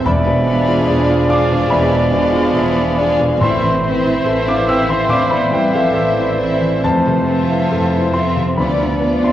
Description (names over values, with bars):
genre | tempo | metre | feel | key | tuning
classical, romantic movement for piano and orchestra | 65-73 BPM | 4/4 | rubato | A minor | A4 = 440 Hz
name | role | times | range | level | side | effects
clear grand piano | melody | 0.0-9.3 s | D2 to E6 | -17 LUFS | left 1 dB | none
warm studio violin section | melody | 0.0-9.3 s | D5 to F5 | -28 LUFS | left 4 dB | none
dark clarinet | second line | 0.0-9.3 s | C5 to E5 | -24 LUFS | right 1 dB | none
warm studio violin section | second line | 0.0-9.3 s | E4 to G#4 | -27 LUFS | left 2 dB | none
rich studio viola section | accompaniment | 0.0-9.3 s | B3 to D4 | -25 LUFS | right 1 dB | none
mellow French horn section | sustained chords | 0.0-9.3 s | E3 to D4 | -23 LUFS | left 1 dB | none
bright oboe | second line | 0.1-9.3 s | C5 to D5 | -27 LUFS | right 1 dB | none
mellow silver concert flute | second line | 0.1-9.3 s | E5 to E6 | -27 LUFS | equal | none
mellow bassoon | accompaniment | 0.1-9.3 s | E3 to F3 | -25 LUFS | right 2 dB | none
rich studio double bass section | bass | 0.1-9.3 s | E1 to F2 | -23 LUFS | right 3 dB | none
warm studio cello section | bass | 0.1-9.3 s | E3 to E4 | -23 LUFS | right 2 dB | none
timpani | percussion | 0.1-4.6 s | E2 to A2 | -24 LUFS | left 1 dB | none
room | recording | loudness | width
wet scoring stage reverb, RT60 1.7 s | worn, warbling old tape, cassette tape, warbly pitch drift | -13 LUFS | side -12 dB against mid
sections
0.0-9.3 A section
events
none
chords
0.1 E7b9; 3.4 Am; 6.8 Fmaj7; 8.6 Bdim/D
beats
| 0.05 0.88 1.71 2.55 | 3.40 4.26 5.10 5.94 | 6.84 7.71 8.57